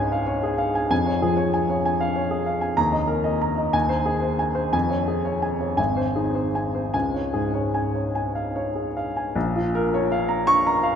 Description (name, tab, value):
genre	classical, romantic character piece for solo piano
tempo	48-66 BPM (dotted quarters)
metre	6/8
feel	rubato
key	Db major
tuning	A4 = 438 Hz
part	warm baby grand piano	solo	0.0-11.0 s	Ab1 to Db6	-21 LUFS	equal	none
room	wet cathedral reverb, RT60 5.2 s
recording	in a vast, echoing space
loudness	-21 LUFS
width	side -8 dB against mid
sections	0.0-9.3 A section; 9.3-11.0 B section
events	none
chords	0.0 Db; 0.9 Db/F; 2.8 Eb5; 3.7 Ab/Eb; 4.7 Db/F; 5.8 Ab; 6.9 Db; 9.3 Bbm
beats	| 0.91 1.86 | 2.78 3.74 | 4.74 5.78 | 6.94 8.13 | 9.35 10.46